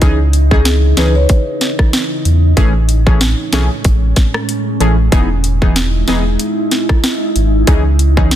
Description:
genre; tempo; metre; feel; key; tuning
dancehall; 94 BPM; 4/4; swing 56% on 16ths; C# minor; A4 = 444 Hz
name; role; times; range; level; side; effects
synth brass stab; accompaniment; 0.0-8.3 s; E3 to G#4; -18 LUFS; left 1 dB; chorus
glassy FM pad; sustained chords; 0.0-8.4 s; A2 to E4; -20 LUFS; right 1 dB; ensemble chorus, built-in reverb, sidechain pumping
sub bass with octave; bass; 0.0-8.4 s; E1 to E2; -12 LUFS; equal; none
island pop drum kit; drums; 0.0-8.4 s; hi-hat, kick drum, rim click, snare drum; -14 LUFS; equal; none
marimba with medium mallets; melody; 0.5-1.3 s; G#4 to C#5; -21 LUFS; left 3 dB; ping-pong delay
room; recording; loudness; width
digital ambience; dense, heavily limited modern master; -10 LUFS; side -11 dB against mid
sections
0.0-8.4 A section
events
none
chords
0.0 C#madd9; 2.6 Amaj7; 5.1 Emaj7; 7.7 C#madd9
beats
| 0.02 0.66 1.29 1.93 | 2.57 3.21 3.85 4.49 | 5.12 5.76 6.40 7.04 | 7.68 8.31

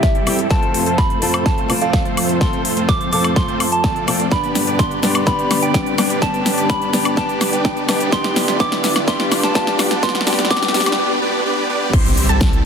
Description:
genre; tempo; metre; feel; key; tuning
EDM, festival progressive house; 126 BPM; 4/4; straight; unclear; A4 = 440 Hz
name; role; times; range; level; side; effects
soft synth bell; melody; 0.0-11.0 s; E5 to D6; -22 LUFS; right 1 dB; chorus, phaser, digital delay
fingerpicked old ladder-braced acoustic guitar; accompaniment; 0.0-11.0 s; G3 to C5; -23 LUFS; left 2 dB; sidechain pumping, digital delay
lush unison pad; sustained chords; 0.0-12.7 s; D2 to A4; -27 LUFS; equal; chorus, sidechain pumping
dense compressed supersaw; riff; 0.0-12.6 s; G3 to D5; -22 LUFS; right 1 dB; sidechain pumping, low-pass filter, digital delay
big-room dance drum kit; drums; 0.0-12.6 s; crash cymbal, hi-hat, shaker, snare drum, woodblock; -21 LUFS; left 1 dB; overdrive
electronic kick drum; drums; 0.0-12.5 s; none; -19 LUFS; equal; none
riser and impact; sound effects; 1.8-12.7 s; none; -26 LUFS; equal; none
wide unison pluck; arpeggios; 11.9-12.6 s; A5 to C6; -24 LUFS; right 1 dB; sidechain pumping
saturated sub bass; bass; 11.9-12.6 s; C2; -19 LUFS; equal; sidechain pumping
room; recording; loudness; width
moderate huge ambient reverb, RT60 4.2 s; dense, heavily limited modern master, high-pass filter; -14 LUFS; side -6 dB against mid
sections
0.0-11.9 A section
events
build-up 0.0-11.9; drum fill 0.0-11.0; filter sweep on supersaw synth 0.0-11.9; filter sweep 0.0-11.9; riser 1.8-11.0; break 11.0-11.9; impact 11.9-12.7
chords
0.0 C; 0.5 F; 4.3 G; 8.1 Dm7; 11.9 C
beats
0.03 | 0.51 0.98 1.46 1.94 | 2.41 2.89 3.36 3.84 | 4.32 4.79 5.27 5.75 | 6.22 6.70 7.17 7.65 | 8.13 8.60 9.08 9.55 | 10.03 10.51 10.98 11.46 | 11.94 12.41

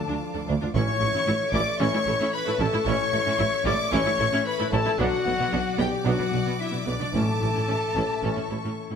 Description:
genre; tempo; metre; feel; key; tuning
cinematic, heroic adventure film score; 113 BPM; 4/4; straight; A major; A4 = 440 Hz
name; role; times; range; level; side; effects
warm symphonic violin section; melody; 0.0-9.0 s; D5 to D6; -32 LUFS; left 2 dB; none
silver concert flute; second line; 0.0-9.0 s; D5 to D6; -34 LUFS; left 3 dB; none
warm clarinet; second line; 0.0-9.0 s; D4 to D5; -34 LUFS; left 2 dB; none
warm symphonic violin section; second line; 0.0-9.0 s; D5 to D6; -37 LUFS; left 2 dB; none
bright trombone section; sustained chords; 0.0-8.4 s; E3 to D4; -37 LUFS; right 4 dB; none
mellow French horn section; sustained chords; 0.0-9.0 s; D4 to D5; -29 LUFS; left 4 dB; none
concert harp; arpeggios; 0.0-9.0 s; A2 to F5; -34 LUFS; left 8 dB; none
warm symphonic viola section; accompaniment; 0.1-9.0 s; A3 to A4; -32 LUFS; right 1 dB; none
rich symphonic cello section; bass; 0.1-9.0 s; D2 to B2; -32 LUFS; right 2 dB; none
clear symphonic double bass section; bass; 0.5-8.6 s; A1 to D2; -31 LUFS; right 4 dB; none
warm tuba; bass; 0.5-8.6 s; A1 to D2; -33 LUFS; right 5 dB; none
timpani; percussion; 0.8-1.5, 7.1-7.9 s; A2; -33 LUFS; equal; none
room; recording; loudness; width
moderate scoring stage reverb, RT60 1.7 s; none; -22 LUFS; side -7 dB against mid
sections
0.0-9.0 A section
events
none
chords
0.0 Dm; 0.7 A; 5.0 Bm; 7.1 A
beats
0.22 | 0.75 1.28 1.81 2.34 | 2.87 3.40 3.93 4.46 | 5.00 5.53 6.05 6.59 | 7.14 7.69 8.24 8.78

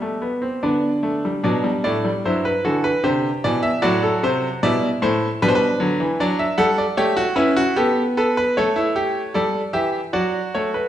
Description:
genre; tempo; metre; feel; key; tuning
classical, baroque-style 4-part fugue for grand piano; 76 BPM; 3/4; straight; G major; A4 = 439 Hz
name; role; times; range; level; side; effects
bright grand piano; solo; 0.0-10.9 s; G2 to F#5; -18 LUFS; equal; none
room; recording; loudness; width
wet recital hall reverb, RT60 1.4 s; recorded in a church or concert hall, nothing above 10.8 kHz; -18 LUFS; side -11 dB against mid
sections
0.0-1.4 A section; 1.4-10.9 B section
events
none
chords
0.0 G/B; 0.6 D5; 1.4 G; 3.0 C; 3.8 D7/A; 5.4 G/B; 6.2 D/F#; 7.8 G/B; 8.6 A7; 10.1 D/F#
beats
0.62 | 1.43 2.24 3.03 | 3.82 4.61 5.41 | 6.20 6.98 7.77 | 8.56 9.35 10.14

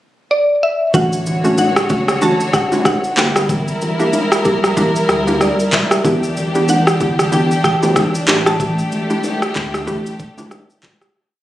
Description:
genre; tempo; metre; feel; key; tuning
afrobeats; 94 BPM; 4/4; swing 58% on 16ths; D major; A4 = 439 Hz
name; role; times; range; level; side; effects
mallet-like synth pluck; melody; 0.3-10.5 s; D5 to A5; -20 LUFS; right 1 dB; chorus, tape echo
hollow square pluck; accompaniment; 0.9-10.5 s; A3 to G4; -19 LUFS; right 1 dB; chorus
warm studio string section; sustained chords; 0.9-11.1 s; D3 to C#5; -20 LUFS; equal; none
warm sub bass; bass; 0.9-10.6 s; D1 to D2; -25 LUFS; equal; none
afro-pop drum kit; drums; 0.9-11.1 s; handclaps, kick drum, rim click, shaker; -17 LUFS; equal; none
congas and bongos; percussion; 0.9-11.0 s; none; -22 LUFS; left 1 dB; none
room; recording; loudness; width
light reverb; recorded on a phone in the room, studio reverb, compression; -13 LUFS; side -14 dB against mid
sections
0.0-0.9 pickup bar; 0.9-11.2 chorus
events
fade-out 8.6-11.2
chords
0.0 N.C.; 0.9 Dmaj7; 3.2 Gm6; 6.0 Em7; 8.3 A7sus4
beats
0.30 | 0.94 1.58 2.22 2.85 | 3.49 4.13 4.77 5.41 | 6.05 6.68 7.32 7.96 | 8.60 9.24 9.88 10.51

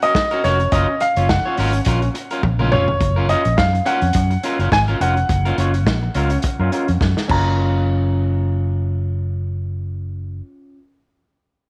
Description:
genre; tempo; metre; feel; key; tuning
disco; 105 BPM; 4/4; swing 56% on 16ths; F# major; A4 = 441 Hz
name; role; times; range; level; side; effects
clear baby grand piano; melody; 0.0-10.4 s; C#5 to A#5; -23 LUFS; equal; low-pass filter
electric guitar at the edge of break-up; accompaniment; 0.0-10.8 s; C#4 to C#5; -26 LUFS; equal; low-pass filter
vintage drum kit; drums; 0.0-7.4 s; crash cymbal, hi-hat, kick drum, snare drum, toms; -25 LUFS; equal; none
fingered electric bass; bass; 0.4-10.4 s; E#1 to F#2; -21 LUFS; equal; none
room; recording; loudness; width
light reverb; none; -18 LUFS; mono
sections
0.0-3.0 A section; 3.0-7.6 B section; 7.6-9.9 C section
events
drum fill 2.4-3.0, 7.0-7.6; filter sweep 3.0-7.6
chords
0.0 D#m7; 0.7 F#maj7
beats
0.15 | 0.72 1.29 1.86 2.43 | 3.01 3.58 4.15 4.72 | 5.29 5.87 6.44 7.01 | 7.58 8.16 8.73 9.30

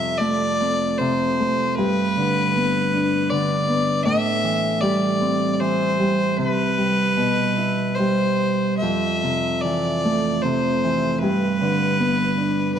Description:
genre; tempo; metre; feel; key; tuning
celtic folk, Celtic slow air; 71-80 BPM; 3/4; rubato; G mixolydian; A4 = 439 Hz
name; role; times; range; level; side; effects
clear fiddle; melody; 0.0-12.8 s; B4 to E5; -22 LUFS; left 2 dB; none
Celtic harp; accompaniment; 0.0-12.8 s; F2 to E4; -21 LUFS; right 1 dB; none
room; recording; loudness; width
moderate scoring stage reverb, RT60 1.9 s; dark, warm production; -18 LUFS; side -8 dB against mid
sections
0.0-12.8 A section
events
none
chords
0.0 F; 1.8 G; 4.1 Am7; 6.4 Cmaj7; 8.8 Fmaj7; 11.2 G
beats
0.20 0.99 | 1.77 2.55 3.31 | 4.06 4.82 5.60 | 6.38 7.16 7.98 | 8.81 9.62 10.43 | 11.21 11.99 12.76

